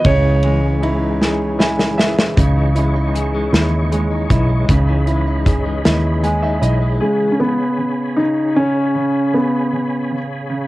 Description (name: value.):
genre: six-eight pop ballad.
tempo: 52 BPM (dotted quarters).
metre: 6/8.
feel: straight.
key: C# minor.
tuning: A4 = 440 Hz.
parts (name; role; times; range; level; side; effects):
warm concert grand piano; melody; 0.0-1.6, 7.0-10.2 s; G#3 to C#5; -17 LUFS; equal; cassette tape, tape echo.
bright upright piano; accompaniment; 0.0-10.7 s; C#3 to G#5; -22 LUFS; right 2 dB; cassette tape.
percussive tonewheel organ; sustained chords; 0.0-10.7 s; E3 to C#6; -26 LUFS; equal; chorus vibrato, fast rotary speaker, cassette tape.
direct-recorded clean electric guitar; arpeggios; 0.0-7.6 s; E3 to F#4; -25 LUFS; left 4 dB; tremolo, cassette tape, tape echo.
vintage muted fingered electric bass; bass; 0.0-7.0 s; B1 to D#2; -17 LUFS; equal; none.
modern studio drum kit; drums; 0.0-6.8 s; hi-hat, kick drum, ride cymbal, snare drum; -17 LUFS; equal; cassette tape.
room: light reverb.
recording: home recording on cassette.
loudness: -14 LUFS.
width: side -18 dB against mid.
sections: 0.0-2.4 A section; 2.4-7.0 B section; 7.0-10.7 C section.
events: drum fill 1.2-2.4; upright piano fill 1.2-2.4, 5.8-7.0, 10.5.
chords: 0.1 C#madd9; 7.0 C#5.